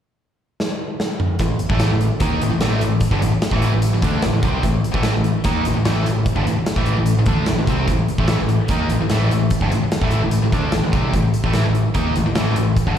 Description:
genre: classic rock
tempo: 148 BPM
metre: 4/4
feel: straight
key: A minor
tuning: A4 = 440 Hz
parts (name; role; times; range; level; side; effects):
- big rock drum kit; drums; 0.6-13.0 s; hi-hat, kick drum, snare drum, toms; -21 LUFS; equal; none
- biting overdriven guitar; riff; 1.4-13.0 s; G2 to D#4; -24 LUFS; right 10 dB; slapback echo
- tight distorted guitar; riff; 1.4-13.0 s; G2 to D#4; -24 LUFS; left 10 dB; distortion, slapback echo
- growling picked electric bass; bass; 1.4-13.0 s; G1 to D#2; -19 LUFS; equal; overdrive
room: light reverb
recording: live gig heard through the venue's PA, recital hall reverb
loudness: -16 LUFS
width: side -9 dB against mid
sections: 0.0-1.4 A section; 1.4-13.0 B section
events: drum fill 0.6-1.4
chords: 0.0 N.C.; 1.4 Am

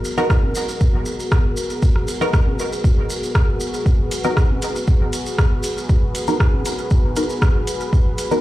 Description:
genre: dub techno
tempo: 118 BPM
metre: 4/4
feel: straight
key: G# minor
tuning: A4 = 440 Hz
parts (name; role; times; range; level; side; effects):
- dark analog pad; sustained chords; 0.0-8.4 s; B3 to B4; -25 LUFS; left 1 dB; chorus, sidechain pumping
- maracas; percussion; 0.0-8.4 s; none; -32 LUFS; right 2 dB; none
- filtered dub chord stab; stabs; 0.2-8.4 s; B3 to A#4; -25 LUFS; equal; chorus, phaser, sidechain pumping, dub echo
- congas and bongos; percussion; 0.2-8.4 s; none; -31 LUFS; equal; sidechain pumping on perc, small room ambience, dub echo
- deep house drum kit; drums; 0.3-8.3 s; hi-hat, rim click; -28 LUFS; equal; small room ambience, dub echo
- electronic kick drum; drums; 0.3-8.0 s; none; -16 LUFS; equal; small room ambience
room: little or no reverb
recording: played on a big sound system in a bare room, large studio reverb, vinyl crackle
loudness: -16 LUFS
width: side -16 dB against mid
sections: 0.0-8.4 A section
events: filter sweep on synth stab 0.0-8.4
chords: 0.0 G#m9

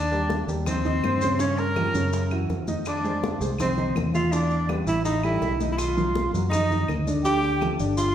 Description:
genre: Afro-Cuban jazz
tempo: 164 BPM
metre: 4/4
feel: straight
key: unclear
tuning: A4 = 440 Hz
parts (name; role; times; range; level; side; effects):
- breathy tenor saxophone; melody; 0.0-8.1 s; C4 to Bb4; -27 LUFS; right 1 dB; none
- breathy mellow silver concert flute; second line; 0.0-8.1 s; C5 to Bb5; -32 LUFS; right 1 dB; none
- fingered electric bass; bass; 0.0-8.1 s; G1 to G2; -27 LUFS; equal; none
- dark baby grand piano; accompaniment; 0.1-8.1 s; Db3 to Fb5; -29 LUFS; right 1 dB; none
- bongos; percussion; 0.1-8.1 s; none; -36 LUFS; left 3 dB; none
- congas; percussion; 0.1-8.1 s; none; -34 LUFS; left 2 dB; none
- maracas; percussion; 0.1-8.1 s; none; -41 LUFS; left 3 dB; none
- claves; percussion; 0.7-7.8 s; none; -43 LUFS; left 2 dB; none
room: wet large studio reverb, RT60 1.4 s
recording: heard from further back in the room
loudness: -22 LUFS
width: side -10 dB against mid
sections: 0.0-8.1 A section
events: none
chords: 0.0 Ebmaj7; 1.4 Gm7b5; 2.1 Gb5; 2.9 Fm7; 4.3 Em7; 5.1 Asus2; 5.8 Bmaj7; 7.3 Dm

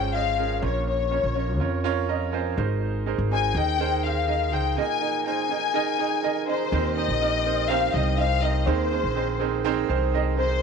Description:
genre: piano-driven pop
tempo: 123 BPM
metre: 4/4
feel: straight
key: Ab major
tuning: A4 = 438 Hz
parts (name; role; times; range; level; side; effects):
- warm studio violin section; melody; 0.0-10.6 s; C5 to Ab5; -26 LUFS; left 11 dB; slapback echo
- clear upright piano; accompaniment; 0.0-10.6 s; Ab2 to Bb5; -26 LUFS; right 12 dB; none
- upright bass; bass; 0.0-10.6 s; Ab1 to F2; -26 LUFS; left 1 dB; none
room: moderate spring reverb, RT60 2.8 s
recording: 1960s-style stereo with parts hard left and right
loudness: -22 LUFS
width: side -6 dB against mid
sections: 0.0-6.7 A section; 6.7-10.6 B section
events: upright piano fill 1.8-2.8, 5.7-6.7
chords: 0.0 Bbm; 2.6 Abadd9; 4.8 Ebsus4; 6.7 Eb6; 8.7 Abadd9

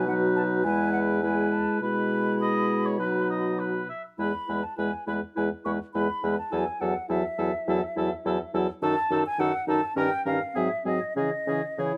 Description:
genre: quick classical-period movement for wind quintet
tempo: 102 BPM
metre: 4/4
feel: rubato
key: E major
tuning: A4 = 440 Hz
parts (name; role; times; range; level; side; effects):
- mellow hollow silver concert flute; melody; 0.0-12.0 s; C#5 to C#6; -34 LUFS; equal; none
- warm oboe; second line; 0.0-11.9 s; G#4 to E5; -35 LUFS; equal; none
- mellow French horn; accompaniment; 0.0-11.9 s; D#3 to G#3; -32 LUFS; equal; none
- warm clarinet; accompaniment; 0.0-12.0 s; B#3 to E4; -35 LUFS; equal; none
- mellow bassoon; bass; 0.0-11.9 s; E2 to C#3; -32 LUFS; equal; none
room: light reverb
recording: dark, warm production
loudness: -27 LUFS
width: mono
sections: 0.0-12.0 A section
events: none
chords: 0.0 B; 0.6 E; 1.8 E/B; 3.0 B; 4.2 E; 6.5 F#m7/E; 8.8 D#dim/F#; 10.0 D#7/G; 10.6 G#7; 11.2 C#m

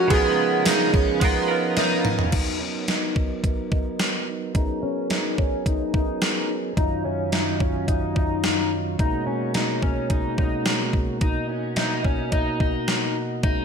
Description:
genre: dream pop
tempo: 108 BPM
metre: 4/4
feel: straight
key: unclear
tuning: A4 = 440 Hz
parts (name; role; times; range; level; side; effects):
- felt-muted upright piano; melody; 0.0-1.7 s; F#4 to G#4; -24 LUFS; right 5 dB; tape echo
- direct-recorded clean electric guitar; accompaniment; 0.0-2.8 s; C#3 to A#4; -28 LUFS; right 5 dB; tremolo, analog chorus
- mellow tonewheel organ; sustained chords; 0.0-13.6 s; F#2 to A#4; -28 LUFS; right 3 dB; slow rotary speaker, low-pass filter
- picked plugged-in twelve-string acoustic guitar; arpeggios; 0.0-13.6 s; B3 to D#4; -26 LUFS; left 3 dB; lush chorus, low-pass filter, tape echo
- gated 80s digital drum machine; drums; 0.1-13.6 s; crash cymbal, hi-hat, kick drum, ride cymbal, snare drum, tambourine, toms; -23 LUFS; equal; gated reverb, gated reverb snare, overdrive
room: moderate scoring stage reverb, RT60 1.7 s, digital ambience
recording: none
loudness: -21 LUFS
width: side -6 dB against mid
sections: 0.0-2.3 A section; 2.3-13.6 B section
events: drum fill 1.8-2.3; filter sweep 2.3-13.6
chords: 0.1 C#13; 2.3 Bmaj7; 4.5 G#m11; 6.8 D#m9/F#; 9.0 G#m11; 11.2 Bmaj7

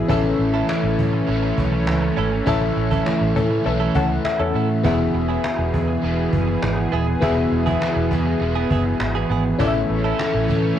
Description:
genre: 1980s-style pop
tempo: 101 BPM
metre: 4/4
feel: straight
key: unclear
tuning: A4 = 441 Hz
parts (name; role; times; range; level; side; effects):
- FM electric piano; accompaniment; 0.0-10.8 s; B3 to F#5; -24 LUFS; left 6 dB; chorus, cassette tape
- overdriven electric guitar; accompaniment; 0.0-10.8 s; E2 to A3; -28 LUFS; right 2 dB; analog chorus, cassette tape
- lush unison pad; sustained chords; 0.0-10.8 s; E3 to G#4; -24 LUFS; right 2 dB; chorus, cassette tape
- direct-recorded clean electric guitar; riff; 0.1-10.7 s; B3 to A4; -30 LUFS; right 10 dB; wide subtle chorus, cassette tape, tape echo
- vintage muted fingered electric bass; bass; 0.1-10.7 s; D#1 to A2; -23 LUFS; right 1 dB; none
- cajon; drums; 0.1-10.6 s; none; -26 LUFS; right 1 dB; cassette tape
- funky polysynth comp; stabs; 3.4-4.7 s; E3 to A4; -28 LUFS; left 7 dB; chorus, cassette tape, tape echo
room: moderate small room reverb, RT60 0.6 s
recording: home recording on cassette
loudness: -18 LUFS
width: side -10 dB against mid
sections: 0.0-10.8 A section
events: band accent 2.5-4.8; FM electric piano fill 3.7-4.8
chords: 0.1 A; 4.8 E; 9.6 A

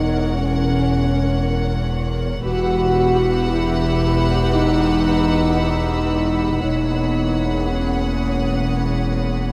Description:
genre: cinematic, suspense film score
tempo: free time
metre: none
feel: none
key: unclear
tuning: A4 = 440 Hz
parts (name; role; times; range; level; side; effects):
- warm symphonic violin section; melody; 0.0-9.5 s; F#5; -32 LUFS; equal; none
- warm symphonic violin section; second line; 0.0-9.5 s; B4 to C#5; -34 LUFS; equal; none
- dark symphonic viola section; accompaniment; 0.0-9.5 s; A#3 to A#4; -32 LUFS; equal; none
- dark French horn section; sustained chords; 0.0-9.5 s; C#4 to F#4; -23 LUFS; equal; none
- warm symphonic cello section; bass; 0.0-9.5 s; E2; -28 LUFS; equal; none
- warm symphonic double bass section; bass; 0.0-9.5 s; E1; -26 LUFS; equal; none
- saturated sub bass; drone; 0.0-9.5 s; E1; -29 LUFS; equal; none
- warm studio violin section; texture; 2.4-9.5 s; B5 to E6; -35 LUFS; equal; none
room: moderate scoring stage reverb, RT60 1.6 s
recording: none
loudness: -19 LUFS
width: mono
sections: 0.0-9.5 A section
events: none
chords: 0.0 F#/E; 2.4 Emadd9; 6.6 F#/E

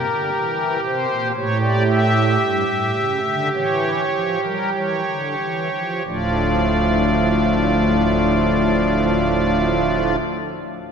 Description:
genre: classical, chorale-style piece for pipe organ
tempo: 44-60 BPM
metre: 4/4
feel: rubato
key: D minor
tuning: A4 = 438 Hz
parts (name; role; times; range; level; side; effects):
- pipe organ, strings celeste; solo; 0.0-10.2 s; D1 to E5; -17 LUFS; equal; none
room: wet church reverb, RT60 3.0 s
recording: none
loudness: -17 LUFS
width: side -6 dB against mid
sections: 0.0-6.1 A section; 6.1-10.9 B section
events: slowing down 0.0-6.1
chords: 0.0 Edim; 1.4 A7; 6.1 Dm

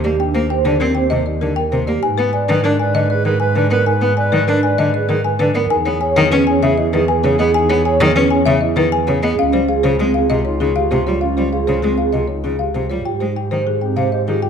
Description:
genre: classical, minimalist pattern music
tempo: 196 BPM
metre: 6/4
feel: straight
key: unclear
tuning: A4 = 440 Hz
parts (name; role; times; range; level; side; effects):
- folk marimba with medium mallets; melody; 0.0-14.5 s; Ab4 to Ab5; -20 LUFS; left 8 dB; none
- mellow clarinet; second line; 0.0-14.5 s; F4 to Cb5; -24 LUFS; right 2 dB; none
- bright cello; accompaniment; 0.0-14.4 s; C3 to D4; -20 LUFS; left 1 dB; none
- vibraphone with soft mallets; arpeggios; 0.0-14.5 s; C4 to D5; -20 LUFS; right 4 dB; none
- warm double bass; bass; 0.0-14.5 s; Db2 to Ab2; -21 LUFS; right 3 dB; none
room: moderate large studio reverb, RT60 1.2 s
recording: dark, warm production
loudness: -14 LUFS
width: side -7 dB against mid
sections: 0.0-13.1 A section; 13.1-14.5 B section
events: none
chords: 0.0 Ebmaj7; 2.0 Abmadd9; 5.7 Emaj7; 9.4 Dbmaj7; 13.1 Abmaj7

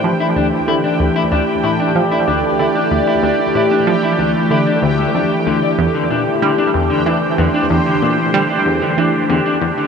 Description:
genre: ambient, sequencer-driven space music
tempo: 94 BPM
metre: 4/4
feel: straight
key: unclear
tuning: A4 = 442 Hz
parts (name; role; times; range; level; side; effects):
- phased analog pad; sustained chords; 0.0-9.9 s; E3 to D5; -16 LUFS; equal; phaser, chorus
- tight sequenced synth; riff; 0.0-9.7 s; D2 to G3; -19 LUFS; equal; chorus, phaser, analog delay
- bubbling stepped-filter texture; texture; 0.0-9.9 s; G5; -25 LUFS; right 6 dB; chorus, built-in reverb
- electric guitar at the edge of break-up; arpeggios; 0.2-9.9 s; D3 to D5; -19 LUFS; moving between left 5 dB and right 2 dB; auto-pan, analog delay
room: wet huge ambient reverb, RT60 8.3 s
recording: cassette tape, nothing above 10.3 kHz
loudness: -13 LUFS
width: side -6 dB against mid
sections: 0.0-9.9 A section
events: none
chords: 0.0 Dm7; 5.8 Edim

